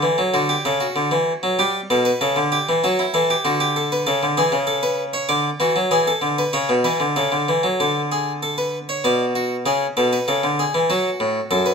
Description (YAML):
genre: classical, baroque-style two-part invention for harpsichord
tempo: 97 BPM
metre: 3/4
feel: straight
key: D major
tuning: A4 = 440 Hz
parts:
  - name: harpsichord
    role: solo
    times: 0.0-11.7 s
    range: F#2 to D5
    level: -17 LUFS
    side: equal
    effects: none
room: moderate stone room reverb, RT60 1.1 s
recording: none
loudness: -17 LUFS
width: side -6 dB against mid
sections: 0.3-7.8 A section; 7.8-11.7 B section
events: none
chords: 0.3 D; 1.6 G; 2.2 A7(no3); 3.5 D; 4.1 A/C#; 5.3 D; 5.9 E7; 7.2 A/C#; 7.8 D5; 9.0 Bm; 9.7 C#m; 10.9 F#m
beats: | 0.34 0.97 1.60 | 2.22 2.84 3.46 | 4.07 4.68 5.30 | 5.91 6.53 7.16 | 7.79 8.42 9.04 | 9.66 10.27 10.89 | 11.50